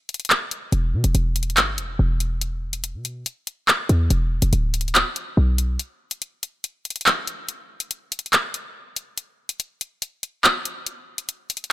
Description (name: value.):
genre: hip hop, drill.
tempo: 142 BPM.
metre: 4/4.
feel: half-time.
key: E minor.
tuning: A4 = 440 Hz.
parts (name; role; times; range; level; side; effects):
drill drum kit; drums; 0.1-11.7 s; handclaps, hi-hat; -20 LUFS; equal; none.
short 808-style bass; bass; 0.7-5.8 s; D1 to B2; -20 LUFS; equal; none.
room: little or no reverb.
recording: none.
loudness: -21 LUFS.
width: side -15 dB against mid.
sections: 0.0-11.7 A section.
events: break 0.0-0.7, 5.8-7.5, 7.5-11.7.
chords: none.